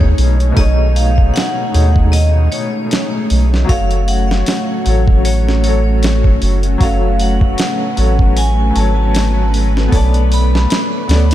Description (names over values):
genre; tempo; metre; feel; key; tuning
trip hop; 77 BPM; 4/4; swing 56% on 16ths; unclear; A4 = 439 Hz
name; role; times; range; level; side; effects
vibraphone with hard mallets; melody; 0.0-11.3 s; C#5 to B5; -22 LUFS; left 1 dB; tape echo
felt-muted upright piano; accompaniment; 0.0-11.3 s; B2 to D5; -21 LUFS; left 2 dB; tremolo, vintage 12-bit sampler grit, tape echo
string machine, cellos; sustained chords; 0.0-11.3 s; A3 to C#6; -21 LUFS; equal; ensemble chorus
soft dub sub bass; bass; 0.0-11.3 s; F#1 to D#2; -13 LUFS; equal; none
dusty soul sampler-style drum kit; drums; 0.0-11.3 s; hi-hat, kick drum, snare drum; -17 LUFS; equal; small room ambience
room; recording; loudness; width
light reverb; none; -11 LUFS; side -13 dB against mid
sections
0.0-11.3 A section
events
none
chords
0.0 B13; 3.7 F#m; 9.9 Bm9